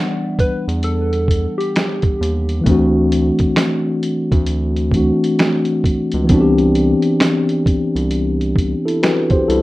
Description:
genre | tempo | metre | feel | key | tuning
lo-fi hip hop | 66 BPM | 4/4 | swing 63% on 16ths | unclear | A4 = 441 Hz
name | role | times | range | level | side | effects
mellow tine electric piano | accompaniment | 0.0-9.6 s | E3 to F#5 | -16 LUFS | left 1 dB | slow stereo tremolo, cassette tape, low-pass filter
soft struck synth lead | melody | 0.4-2.6 s | G4 to B4 | -23 LUFS | equal | chorus, low-pass filter, analog delay
lo-fi sampler-style drum kit | drums | 0.4-9.6 s | finger snaps, hi-hat, kick drum, snare drum | -18 LUFS | right 1 dB | none
round analog bass | bass | 0.7-9.6 s | C2 to E2 | -19 LUFS | right 1 dB | none
room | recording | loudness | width
little or no reverb | rough home demo mix | -14 LUFS | side -18 dB against mid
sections
0.0-9.6 A section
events
none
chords
0.0 Em7; 2.7 D9; 6.3 Cmaj9

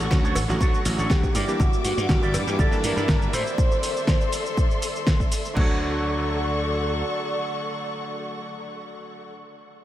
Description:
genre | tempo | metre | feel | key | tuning
nu-disco, nu disco | 121 BPM | 4/4 | straight | D major | A4 = 440 Hz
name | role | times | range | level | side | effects
bright electric grand piano | accompaniment | 0.0-9.3 s | D3 to A5 | -32 LUFS | right 2 dB | sidechain pumping, analog delay
clear studio string section | sustained chords | 0.0-9.3 s | Bb3 to D6 | -31 LUFS | left 2 dB | sidechain pumping
glassy slap bass | bass | 0.0-7.0 s | G1 to A2 | -26 LUFS | equal | none
pop drum kit | drums | 0.0-5.7 s | cabasa, crash cymbal, hi-hat, snare drum | -29 LUFS | equal | none
electronic kick drum | drums | 0.1-5.7 s | none | -22 LUFS | equal | none
electric guitar with an envelope filter | riff | 0.2-9.3 s | D4 to D5 | -35 LUFS | right 3 dB | wide subtle chorus, analog delay
cowbell | percussion | 0.4-2.4 s | none | -38 LUFS | left 1 dB | none
wide unison lead | melody | 1.1-9.3 s | F#4 to D5 | -30 LUFS | equal | diffuse ambient delay
room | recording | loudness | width
moderate huge ambient reverb, RT60 8.3 s | dreamy mix soaked in reverb | -21 LUFS | side -13 dB against mid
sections
0.0-5.6 A section; 5.6-9.5 B section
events
drop 0.0-5.6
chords
0.0 Dmaj7; 1.4 Gm6; 3.3 Am; 5.6 Dmaj7

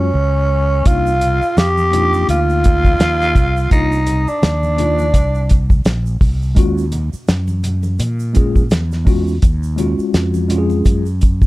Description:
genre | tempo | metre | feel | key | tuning
hip hop, jazz-hop | 84 BPM | 4/4 | swing 58% on 16ths | unclear | A4 = 438 Hz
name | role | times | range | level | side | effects
growling tenor saxophone | melody | 0.0-5.7 s | Db4 to G4 | -17 LUFS | equal | slapback echo, plate reverb
mellow tine electric piano | accompaniment | 0.0-11.1 s | Ab3 to Ab4 | -21 LUFS | left 2 dB | medium stereo tremolo, plate reverb
fretless electric bass | bass | 0.0-11.5 s | Bb1 to Bb2 | -17 LUFS | equal | none
cloth-damped thuddy drum kit | drums | 0.9-11.5 s | hi-hat, kick drum, snare drum | -14 LUFS | equal | none
tube shaker and congas | percussion | 0.9-11.5 s | none | -31 LUFS | right 1 dB | none
room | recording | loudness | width
light reverb | none | -13 LUFS | side -19 dB against mid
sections
0.0-11.5 A section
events
none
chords
0.0 Ebm7 (rootless); 0.9 Cm11; 6.6 Ebm11

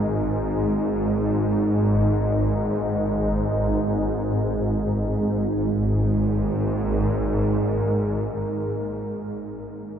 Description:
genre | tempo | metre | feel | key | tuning
dark ambient drone | free time | none | none | unclear | A4 = 440 Hz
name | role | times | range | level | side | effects
deep dark ambient pad | sustained chords | 0.0-9.4 s | G#3 to A#4 | -26 LUFS | right 1 dB | chorus, built-in reverb
swarming drone | drone | 0.0-9.0 s | G#1 to G#2 | -23 LUFS | equal | built-in reverb
room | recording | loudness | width
wet huge ambient reverb, RT60 8.6 s | none | -21 LUFS | side -8 dB against mid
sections
0.0-5.5 A section; 5.5-10.0 B section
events
none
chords
0.0 G#sus2

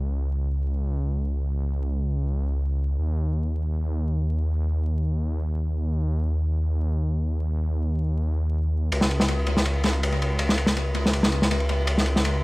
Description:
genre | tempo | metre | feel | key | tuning
drum and bass, jungle | free time | none | none | unclear | A4 = 440 Hz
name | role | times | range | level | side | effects
detuned saw bass | bass | 0.0-12.4 s | C#2 to D#2 | -23 LUFS | equal | tube saturation
crunchy breakbeat drum kit | drums | 8.9-12.3 s | ride cymbal, snare drum | -22 LUFS | equal | tape echo
room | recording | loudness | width
little or no reverb | echo-heavy mix, vinyl crackle | -22 LUFS | side -22 dB against mid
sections
0.0-12.4 A section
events
none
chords
none

